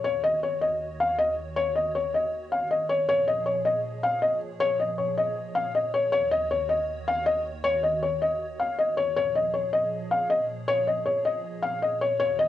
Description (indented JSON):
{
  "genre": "hip hop",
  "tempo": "158 BPM",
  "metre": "4/4",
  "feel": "half-time",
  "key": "Bb minor",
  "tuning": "A4 = 441 Hz",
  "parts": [
    { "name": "felt-muted upright piano", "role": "melody", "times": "0.0-12.5 s", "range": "Db5 to F5", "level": "-23 LUFS", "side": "left 2 dB", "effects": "cassette tape, plate reverb" },
    { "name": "hollow soft pad", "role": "sustained chords", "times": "0.0-12.5 s", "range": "Eb2 to Db5", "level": "-37 LUFS", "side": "right 3 dB", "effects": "ensemble chorus, cassette tape" }
  ],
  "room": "wet studio reverb, RT60 0.5 s",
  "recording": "home recording on cassette, nothing above 10.8 kHz",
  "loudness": "-23 LUFS",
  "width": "side -12 dB against mid",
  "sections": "0.0-3.1 A section; 3.1-12.5 B section",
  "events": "none",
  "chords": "0.0 Ebm7; 3.1 Bbm7; 6.1 Ebm7; 9.2 Bbm7"
}